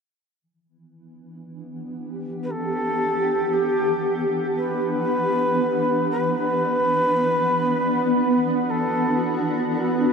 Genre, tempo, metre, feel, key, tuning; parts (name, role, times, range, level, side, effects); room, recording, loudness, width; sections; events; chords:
ambient; 58 BPM; 3/4; straight; E minor; A4 = 441 Hz
granular cloud pad; sustained chords; 1.6-10.1 s; E3 to F#5; -23 LUFS; equal; built-in reverb
breathy shakuhachi; melody; 2.4-10.1 s; G4 to B4; -23 LUFS; equal; diffuse ambient delay
wet huge ambient reverb, RT60 8.2 s; dark, warm production; -20 LUFS; side -5 dB against mid
0.4-10.1 A section
0.4 Em7; 6.6 Bm/E